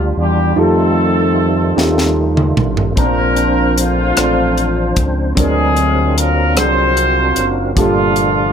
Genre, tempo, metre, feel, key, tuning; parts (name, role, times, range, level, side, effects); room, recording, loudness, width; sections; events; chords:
slow gospel; 50 BPM (dotted quarters); 6/8; straight; Bb major; A4 = 443 Hz
warm horn section; melody; 0.0-8.5 s; F3 to C5; -16 LUFS; equal
warm upright piano; accompaniment; 0.0-8.5 s; G2 to Bb5; -19 LUFS; right 2 dB
tonewheel organ; sustained chords; 0.0-8.5 s; Eb3 to C5; -21 LUFS; right 1 dB; slow rotary speaker, overdrive, chorus vibrato
smooth gliding synth bass; bass; 0.0-8.5 s; F#1 to F2; -18 LUFS; left 1 dB
crisp fusion drum kit; drums; 1.8-8.3 s; hi-hat, kick drum, rim click, snare drum, toms; -17 LUFS; equal
light reverb; -12 LUFS; side -7 dB against mid
0.0-8.5 A section
drum fill 1.8-3.0
0.0 Ebmaj9; 0.6 F9; 3.0 Bbmaj9; 5.4 D7alt; 7.8 Gm9